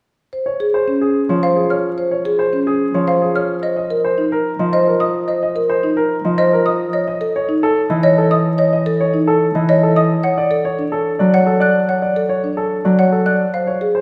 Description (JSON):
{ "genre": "classical, minimalist pattern music", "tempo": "109 BPM", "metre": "3/4", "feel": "straight", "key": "Db major", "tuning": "A4 = 440 Hz", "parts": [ { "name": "marimba with soft mallets", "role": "arpeggios", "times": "0.3-14.0 s", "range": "Db4 to C#5", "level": "-21 LUFS", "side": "equal", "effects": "none" }, { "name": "warm grand piano", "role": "melody", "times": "0.5-14.0 s", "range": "Ab4 to Eb5", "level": "-22 LUFS", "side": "equal", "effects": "none" }, { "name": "Celtic harp", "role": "accompaniment", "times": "1.3-13.4 s", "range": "E3 to F#3", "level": "-22 LUFS", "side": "equal", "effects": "none" }, { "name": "xylophone with soft rubber mallets", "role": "arpeggios", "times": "1.4-13.7 s", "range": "Eb5 to F#6", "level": "-24 LUFS", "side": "equal", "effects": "none" } ], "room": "wet scoring stage reverb, RT60 1.6 s", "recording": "heard from further back in the room", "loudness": "-16 LUFS", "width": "mono", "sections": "0.2-14.0 A section", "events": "none", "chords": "0.2 Db; 3.5 Fsus4; 6.8 A; 10.1 D; 13.4 Db" }